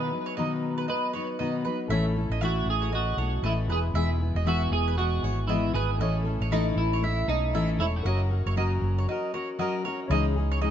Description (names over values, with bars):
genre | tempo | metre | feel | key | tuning
acoustic pop | 117 BPM | 4/4 | swing 60% on 16ths | unclear | A4 = 440 Hz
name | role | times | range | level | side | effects
clean electric guitar | melody | 0.0-9.6 s | D#4 to B4 | -31 LUFS | right 2 dB | analog chorus, tape echo
fingerpicked steel-string acoustic guitar | accompaniment | 0.0-10.7 s | A2 to B4 | -30 LUFS | left 4 dB | none
mandolin | arpeggios | 0.3-10.7 s | B4 to E5 | -34 LUFS | right 5 dB | none
warm upright piano | accompaniment | 1.9-10.7 s | E3 to A#5 | -39 LUFS | left 4 dB | none
hollow-body short-scale fingered electric bass | bass | 1.9-10.7 s | E1 to C#2 | -27 LUFS | equal | none
room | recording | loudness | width
light reverb | nothing above 7.8 kHz | -24 LUFS | side -10 dB against mid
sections
0.0-10.1 A section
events
break 9.1-10.1; upright piano fill 9.3-10.1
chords
0.0 B; 1.9 A; 3.7 E; 6.0 A; 8.1 F#; 10.1 C#madd9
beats
0.36 0.87 1.39 | 1.90 2.41 2.92 3.44 | 3.95 4.46 4.97 5.49 | 6.00 6.51 7.02 7.54 | 8.05 8.56 9.07 9.59 | 10.10 10.61